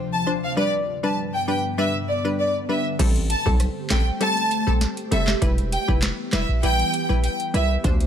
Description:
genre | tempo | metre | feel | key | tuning
dancehall | 99 BPM | 4/4 | straight | A minor | A4 = 439 Hz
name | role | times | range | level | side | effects
wavetable chord stab | accompaniment | 0.0-8.1 s | F3 to C5 | -27 LUFS | left 1 dB | none
ethereal airy pad | sustained chords | 0.0-8.1 s | D2 to C5 | -30 LUFS | equal | ensemble chorus, built-in reverb, phaser, sidechain pumping
rich studio violin section | melody | 0.1-7.7 s | D5 to A5 | -25 LUFS | equal | ping-pong delay
hard-hitting 808-style bass | bass | 3.0-8.1 s | E1 to D2 | -24 LUFS | equal | none
booming analog drum machine | drums | 3.0-8.1 s | crash cymbal, handclaps, hi-hat, kick drum, rim click, snare drum | -22 LUFS | equal | none
room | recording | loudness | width
little or no reverb | none | -20 LUFS | side -9 dB against mid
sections
0.0-3.0 A section; 3.0-8.1 B section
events
none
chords
0.0 Dm7; 0.6 G; 3.0 Am7; 5.4 Em

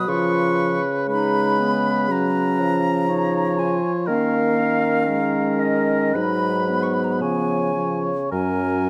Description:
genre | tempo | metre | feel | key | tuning
classical, slow romantic movement for wind quintet | 52-61 BPM | 4/4 | rubato | unclear | A4 = 439 Hz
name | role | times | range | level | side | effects
silver concert flute | melody | 0.0-8.9 s | D#5 to D#6 | -28 LUFS | equal | none
warm oboe | second line | 0.0-8.9 s | A#4 to C#5 | -29 LUFS | equal | none
mellow clarinet | accompaniment | 0.0-8.9 s | B3 to E#4 | -29 LUFS | equal | none
warm French horn | accompaniment | 0.0-8.9 s | E#3 to A#3 | -27 LUFS | equal | none
mellow bassoon | bass | 0.0-8.9 s | F#2 to D#3 | -26 LUFS | equal | none
room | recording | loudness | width
light reverb | close, detailed microphones | -21 LUFS | mono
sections
0.0-8.9 A section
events
none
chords
0.1 C#9; 4.1 D#5; 6.2 G#m7; 7.2 C#7; 8.3 F#

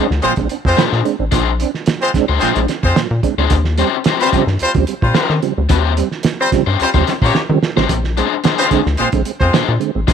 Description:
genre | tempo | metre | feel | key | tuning
funk | 110 BPM | 4/4 | straight | unclear | A4 = 442 Hz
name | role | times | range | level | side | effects
raw garage guitar | accompaniment | 0.0-10.1 s | Db4 to C5 | -19 LUFS | left 14 dB | overdrive
tonewheel organ | stabs | 0.0-10.1 s | Bb2 to D4 | -19 LUFS | right 12 dB | chorus vibrato, slow rotary speaker
rubbery square bass | bass | 0.1-10.1 s | A1 to Eb3 | -17 LUFS | left 1 dB | none
cloth-damped thuddy drum kit | drums | 0.1-10.1 s | hi-hat, kick drum, snare drum | -18 LUFS | right 3 dB | none
clear horn section | second line | 0.2-9.6 s | G3 to Db5 | -18 LUFS | left 1 dB | none
room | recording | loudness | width
little or no reverb | 1960s-style stereo with parts hard left and right | -13 LUFS | side -7 dB against mid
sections
0.0-10.1 A section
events
drum fill 7.3-7.9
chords
0.0 Bb9; 3.5 Eb13; 7.9 Bb9

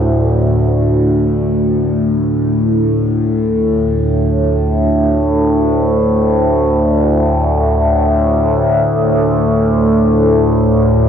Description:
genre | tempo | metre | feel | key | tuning
ambient | free time | none | none | unclear | A4 = 442 Hz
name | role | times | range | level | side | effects
overtone-sweeping drone | solo | 0.0-11.1 s | D2 to A2 | -11 LUFS | equal | chorus, built-in reverb, phaser
room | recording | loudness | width
wet cathedral reverb, RT60 6.2 s | worn, warbling old tape, cassette tape, warbly pitch drift | -11 LUFS | side -8 dB against mid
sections
0.0-11.1 A section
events
none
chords
0.0 D5

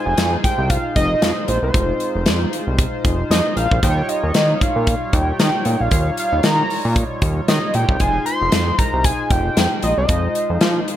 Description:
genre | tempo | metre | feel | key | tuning
early-eighties boogie funk | 115 BPM | 4/4 | swing 56% on 16ths | F minor | A4 = 436 Hz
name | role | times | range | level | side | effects
fat analog lead | melody | 0.0-11.0 s | C5 to C6 | -21 LUFS | right 1 dB | slapback echo
chorused polysynth | accompaniment | 0.0-11.0 s | G3 to Db5 | -26 LUFS | left 2 dB | none
fat analog bass | bass | 0.1-10.8 s | F1 to F3 | -20 LUFS | equal | none
modern studio drum kit | drums | 0.2-11.0 s | hi-hat, kick drum, snare drum | -19 LUFS | equal | gated reverb
room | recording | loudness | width
studio reverb | faint mains hum | -16 LUFS | side -12 dB against mid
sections
0.0-11.0 A section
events
none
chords
0.0 Fm7; 3.8 Eb9; 8.0 Fm7

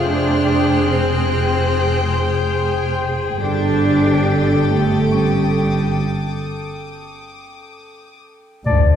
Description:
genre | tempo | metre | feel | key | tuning
cinematic | 69 BPM | 3/4 | uneven beats | unclear | A4 = 439 Hz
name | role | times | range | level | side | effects
rich chamber violin section | melody | 0.0-6.0 s | G5 | -28 LUFS | left 5 dB | none
rich chamber viola section | accompaniment | 0.0-6.0 s | G4 to C5 | -23 LUFS | right 1 dB | none
drifting glass-harmonics texture | sustained chords | 0.0-9.0 s | Ab4 to G5 | -26 LUFS | left 3 dB | chorus, built-in reverb
clear chamber cello section | bass | 0.0-9.0 s | D2 to D4 | -20 LUFS | right 1 dB | none
rich chamber double bass section | bass | 0.0-9.0 s | F1 to D2 | -20 LUFS | equal | none
celesta | texture | 0.0-9.0 s | C#4 to F6 | -30 LUFS | left 4 dB | none
clear chamber violin section | texture | 0.0-8.2 s | D6 to A6 | -32 LUFS | left 6 dB | none
clear clarinet | second line | 8.7-9.0 s | D5 | -18 LUFS | left 7 dB | none
sub drop | sound effects | 8.7-9.0 s | none | -16 LUFS | left 1 dB | none
room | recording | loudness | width
wet scoring stage reverb, RT60 1.7 s | heard from further back in the room | -15 LUFS | side -9 dB against mid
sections
0.0-8.7 A section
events
break 6.0-8.7; band accent 8.7; impact 8.7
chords
0.0 Fmadd9; 3.4 Gsus2

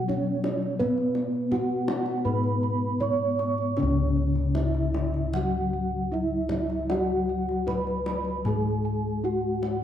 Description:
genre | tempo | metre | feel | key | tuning
Javanese gamelan | 77-86 BPM | 4/4 | straight | C# slendro | A4 = 445 Hz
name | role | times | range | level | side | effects
gamelan-type bronze metallophone | melody | 0.0-9.8 s | B3-25c to C#5 | -29 LUFS | right 2 dB | none
gamelan-type bronze metallophone | accompaniment | 0.0-9.8 s | C#3 to B3-25c | -30 LUFS | left 2 dB | none
gamelan-type bronze metallophone | arpeggios | 0.0-9.8 s | B4-25c to C#6 | -34 LUFS | right 5 dB | none
gamelan-type bossed gongs | bass | 0.0-9.8 s | C#2 to B4-25c | -29 LUFS | left 2 dB | none
kendang | percussion | 0.1-9.8 s | none | -36 LUFS | left 2 dB | none
room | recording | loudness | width
moderate recital hall reverb, RT60 1.4 s | dark, warm production | -24 LUFS | side -10 dB against mid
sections
0.0-3.8 A section; 3.8-9.8 B section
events
none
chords
none

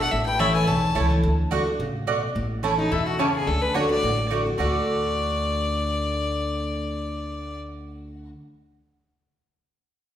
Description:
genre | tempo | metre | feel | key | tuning
bluegrass | 215 BPM | 4/4 | swing 54% on 8ths | D major | A4 = 440 Hz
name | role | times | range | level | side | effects
clear fiddle | melody | 0.0-7.6 s | Eb4 to B5 | -27 LUFS | left 3 dB | none
lap resonator guitar | second line | 0.0-8.3 s | F#3 to E5 | -30 LUFS | left 4 dB | none
picked steel-string acoustic guitar | accompaniment | 0.0-8.3 s | E2 to F#4 | -27 LUFS | equal | none
upright bass | bass | 0.1-8.3 s | A1 to E2 | -29 LUFS | equal | none
mandolin | stabs | 0.4-8.3 s | A3 to A5 | -29 LUFS | right 4 dB | none
room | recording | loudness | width
wet recital hall reverb, RT60 1.4 s | recorded in a church or concert hall | -21 LUFS | side -10 dB against mid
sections
0.0-2.4 A section; 2.4-4.6 B section; 4.6-6.8 C section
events
none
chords
0.1 A; 1.2 D; 2.4 A; 3.5 D

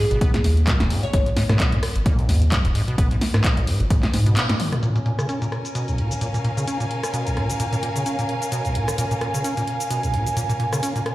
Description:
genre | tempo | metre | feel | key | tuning
acid house | 130 BPM | 4/4 | swing 56% on 16ths | Bb phrygian | A4 = 440 Hz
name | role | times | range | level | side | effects
glassy wavetable pluck | melody | 0.0-1.2 s | Db5 | -28 LUFS | equal | chorus, ping-pong delay
acid bass, square | riff | 0.0-11.0 s | Ab1 to Db4 | -24 LUFS | equal | tube saturation, tape echo
round analog bass | bass | 0.1-4.4 s | Eb1 to Ab2 | -19 LUFS | equal | sidechain pumping
punchy analog drum machine | drums | 0.1-11.1 s | handclaps, hi-hat, rim click, shaker, snare drum, toms | -27 LUFS | equal | overdrive, low-pass filter on snare, low-pass filter on hats, low-pass filter on toms, low-pass filter on perc
electronic kick drum | drums | 0.2-4.0 s | none | -21 LUFS | equal | overdrive
warm analog pad | sustained chords | 4.8-11.1 s | Ab5 | -30 LUFS | right 4 dB | chorus, sidechain pumping
rich chamber string section | texture | 4.8-11.1 s | Db4 to Ab5 | -29 LUFS | left 1 dB | sidechain pumping
room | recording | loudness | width
moderate plate reverb, RT60 1.7 s | played on a big sound system in a bare room, large studio reverb | -19 LUFS | side -16 dB against mid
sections
0.0-4.8 A section; 4.8-11.1 B section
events
break 4.4-4.8; band accent 4.4; drum fill 4.6; filter sweep on drum 4.8-11.1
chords
0.0 Abm; 4.8 Bbm7

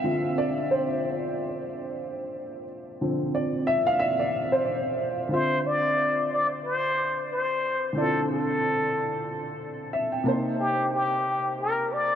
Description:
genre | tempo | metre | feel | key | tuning
R&B | 91 BPM | 4/4 | swing 59% on 16ths | D minor | A4 = 441 Hz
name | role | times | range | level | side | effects
dark upright piano | accompaniment | 0.0-12.2 s | C3 to A5 | -26 LUFS | equal | wide subtle chorus
trumpet with plunger mute | melody | 5.3-12.2 s | G4 to D5 | -25 LUFS | left 1 dB | diffuse ambient delay
room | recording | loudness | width
wet huge ambient reverb, RT60 6.0 s | dreamy mix soaked in reverb | -24 LUFS | side -9 dB against mid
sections
0.0-5.3 A section; 5.3-12.2 B section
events
upright piano solo 0.0-5.3; upright piano fill 9.6-10.6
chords
0.0 Dm9; 10.2 Cm7

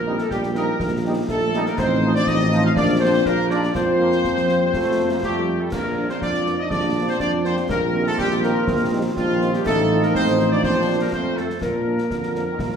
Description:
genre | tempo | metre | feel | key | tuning
military-style march for wind band | 122 BPM | 2/4 | straight | Bb major | A4 = 441 Hz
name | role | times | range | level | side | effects
clear trumpet section | melody | 0.0-12.8 s | F4 to F5 | -26 LUFS | equal | none
warm euphonium | second line | 0.0-12.8 s | F3 to F4 | -26 LUFS | equal | none
warm woodwind section | second line | 0.0-12.8 s | F4 to F5 | -26 LUFS | left 1 dB | none
mellow tuba | bass | 0.0-12.8 s | A1 to Bb2 | -23 LUFS | right 2 dB | none
mellow French horn section | accompaniment | 0.1-12.4 s | F3 to F4 | -27 LUFS | left 2 dB | none
clear trombone section | sustained chords | 0.1-12.8 s | D3 to Eb4 | -28 LUFS | right 2 dB | none
concert snare drum, concert bass drum and clash cymbals | drums | 0.2-12.8 s | none | -31 LUFS | equal | none
room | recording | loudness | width
wet recital hall reverb, RT60 1.3 s | recorded in a church or concert hall | -18 LUFS | side -7 dB against mid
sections
0.0-12.8 A section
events
none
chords
0.0 Cm7/Bb; 1.8 F7/A; 2.8 Bb; 3.8 Fsus4; 4.7 F; 5.7 Bb; 7.7 Cm7/Bb; 9.7 F7/A; 10.6 Bb; 11.1 F; 11.6 Bb

